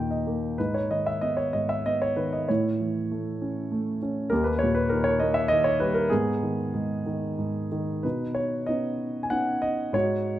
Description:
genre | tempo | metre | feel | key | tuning
classical, lyrical solo piano | 90-102 BPM | 3/4 | rubato | G# harmonic minor | A4 = 440 Hz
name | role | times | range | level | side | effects
dark concert grand piano | solo | 0.0-10.4 s | D#2 to A#5 | -24 LUFS | equal | none
room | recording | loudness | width
moderate recital hall reverb, RT60 1.7 s | none | -24 LUFS | side -13 dB against mid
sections
0.0-8.0 A section; 8.0-10.4 B section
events
grand piano fill 0.0-0.6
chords
0.0 D#5; 0.6 G#m; 2.5 A; 4.3 D#; 6.1 G#m; 8.0 Badd9

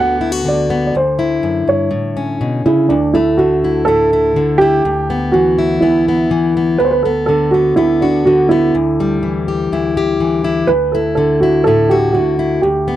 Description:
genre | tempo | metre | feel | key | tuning
folk | 123 BPM | 4/4 | straight | D major | A4 = 442 Hz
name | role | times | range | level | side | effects
dark upright piano | melody | 0.0-13.0 s | D4 to F#5 | -13 LUFS | right 2 dB | none
fingerpicked plugged-in steel-string acoustic guitar | accompaniment | 0.0-13.0 s | D2 to G4 | -16 LUFS | left 3 dB | none
room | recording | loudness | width
light reverb | dry, close 1970s-style studio recording | -12 LUFS | side -12 dB against mid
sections
0.0-2.9 A section; 2.9-13.0 A section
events
none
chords
0.0 Bm/D; 0.9 Cadd9/D; 1.9 A; 2.9 Dadd9; 4.8 Em/D; 6.8 Bm/D; 8.7 Dsus24; 10.7 Dadd9

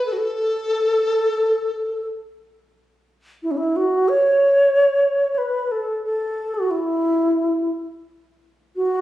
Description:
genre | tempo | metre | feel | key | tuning
chinese traditional, Chinese chamber ensemble | free time | none | none | A gong mode | A4 = 440 Hz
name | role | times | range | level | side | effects
bright reedy low xiao | melody | 0.0-9.0 s | C#4 to C#5 | -18 LUFS | equal | none
mellow large dizi | second line | 0.0-2.1 s | F#4 to A4 | -24 LUFS | left 5 dB | none
room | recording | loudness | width
light reverb | recorded on a phone in the room, studio reverb | -18 LUFS | side -14 dB against mid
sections
0.0-2.7 A section; 2.7-9.0 B section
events
none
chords
none

